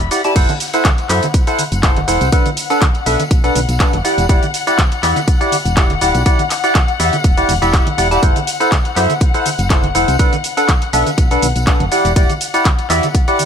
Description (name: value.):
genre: piano house.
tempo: 122 BPM.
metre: 4/4.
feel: swing 54% on 16ths.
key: E minor.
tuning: A4 = 436 Hz.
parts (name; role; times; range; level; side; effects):
muted studio string section; sustained chords; 0.0-13.5 s; F#5 to B5; -23 LUFS; left 8 dB; sidechain pumping.
solid FM bass; bass; 0.0-13.0 s; D1 to F#2; -19 LUFS; equal; sidechain pumping.
house drum kit; drums; 0.0-13.5 s; crash cymbal, handclaps, hi-hat, shaker; -21 LUFS; equal; studio reverb.
percussive organ stab; riff; 0.1-13.4 s; D4 to A5; -16 LUFS; equal; wide subtle chorus, sidechain pumping.
electronic kick drum; drums; 0.4-13.3 s; none; -14 LUFS; equal; studio reverb.
tambourine and congas; percussion; 0.4-13.5 s; none; -27 LUFS; right 4 dB; none.
room: little or no reverb.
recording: none.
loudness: -12 LUFS.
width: side -7 dB against mid.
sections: 0.0-13.5 A section.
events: none.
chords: 0.4 F#m7b5; 2.3 Bm7; 4.0 Em9; 8.2 F#m7b5; 10.2 Bm7; 11.9 Em9.